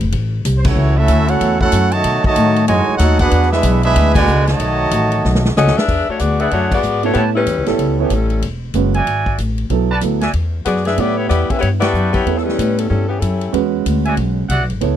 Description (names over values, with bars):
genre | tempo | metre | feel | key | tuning
jazz, big band swing | 188 BPM | 4/4 | swing 62% on 8ths | unclear | A4 = 439 Hz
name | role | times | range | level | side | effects
upright bass | bass | 0.0-15.0 s | E1 to B2 | -16 LUFS | left 1 dB | none
swinging big-band drum kit | drums | 0.0-14.9 s | crash cymbal, hi-hat, kick drum, ride cymbal, snare drum | -22 LUFS | left 1 dB | none
clear trumpet section | melody | 0.6-5.5 s | A3 to A5 | -17 LUFS | right 1 dB | tape echo
mellow trombone section | second line | 0.7-5.5 s | A2 to F#4 | -19 LUFS | right 5 dB | none
clear saxophone section | melody | 5.6-8.4, 10.7-13.5 s | E3 to E5 | -18 LUFS | left 4 dB | none
warm trumpet section | stabs | 6.4-14.6 s | E4 to C#6 | -20 LUFS | right 3 dB | none
warm grand piano | accompaniment | 7.0-15.0 s | F#3 to C#5 | -20 LUFS | right 14 dB | none
room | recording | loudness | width
small room ambience | dry, close 1970s-style studio recording | -13 LUFS | side -10 dB against mid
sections
0.0-5.9 A section; 5.9-15.0 B section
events
band accent 0.6, 4.1, 6.7, 11.8; drum fill 5.2-5.9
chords
0.0 C#aug; 0.8 F#m7; 2.0 B9; 3.3 E9; 4.6 B9; 5.9 E9; 7.2 A9; 8.4 E9; 9.7 Bm7; 10.3 E9; 11.0 A9; 13.5 E9